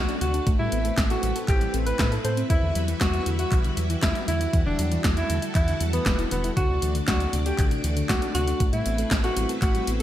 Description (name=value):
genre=italo disco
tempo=118 BPM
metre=4/4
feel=straight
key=E minor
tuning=A4 = 440 Hz
part: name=warm alto saxophone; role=melody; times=0.0-10.0 s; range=B3 to C5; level=-29 LUFS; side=right 1 dB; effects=vintage 12-bit sampler grit, digital delay
part: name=string machine, full ensemble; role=sustained chords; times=0.0-10.0 s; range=G3 to D5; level=-32 LUFS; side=equal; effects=ensemble chorus
part: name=soft round pluck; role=arpeggios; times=0.0-10.0 s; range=C3 to A4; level=-32 LUFS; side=left 2 dB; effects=chorus, tape echo
part: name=round analog bass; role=bass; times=0.0-10.0 s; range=E1 to A2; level=-27 LUFS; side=equal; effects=none
part: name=house drum kit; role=drums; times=0.1-10.0 s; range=handclaps, hi-hat, snare drum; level=-29 LUFS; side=equal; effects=studio reverb, gated reverb
part: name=electronic kick drum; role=drums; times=0.5-9.7 s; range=none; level=-24 LUFS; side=equal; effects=studio reverb
room=little or no reverb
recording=none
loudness=-21 LUFS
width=side -12 dB against mid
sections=0.0-10.0 A section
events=none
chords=0.5 Amadd9; 2.5 Emadd9; 6.6 D; 8.6 Amadd9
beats=| 0.47 0.97 1.48 1.99 | 2.50 3.01 3.52 4.03 | 4.53 5.04 5.55 6.06 | 6.57 7.08 7.58 8.09 | 8.60 9.11 9.62